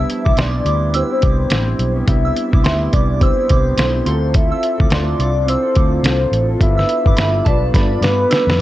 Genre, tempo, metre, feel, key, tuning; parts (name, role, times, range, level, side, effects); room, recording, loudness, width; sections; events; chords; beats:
indie pop, bedroom pop; 106 BPM; 4/4; swing 60% on 16ths; C major; A4 = 440 Hz
soft octave-layered synth lead; melody; 0.0-8.6 s; B4 to E5; -20 LUFS; left 1 dB; lush chorus, analog delay
soft synth bell; second line; 0.0-8.5 s; A5 to E6; -27 LUFS; right 3 dB; phaser, lush chorus, analog delay
electric guitar through a small old amp; accompaniment; 0.0-8.6 s; C3 to B4; -26 LUFS; left 2 dB; analog chorus, vibrato effect, plate reverb
soft electric-piano-like synth keys; accompaniment; 0.0-8.6 s; B3 to C5; -24 LUFS; right 3 dB; chorus
vintage muted fingered electric bass; bass; 0.0-8.6 s; G1 to G2; -18 LUFS; equal
lo-fi sampler-style drum kit; drums; 0.1-8.6 s; hi-hat, kick drum, snare drum; -16 LUFS; equal; vintage 12-bit sampler grit
light reverb; cassette tape; -13 LUFS; side -15 dB against mid
0.0-8.6 A section
drum fill 7.7-8.6
0.0 Cmaj7; 4.1 Dm7; 6.6 G7
0.38 0.94 1.51 | 2.08 2.64 3.21 3.77 | 4.34 4.91 5.47 6.04 | 6.61 7.17 7.74 8.31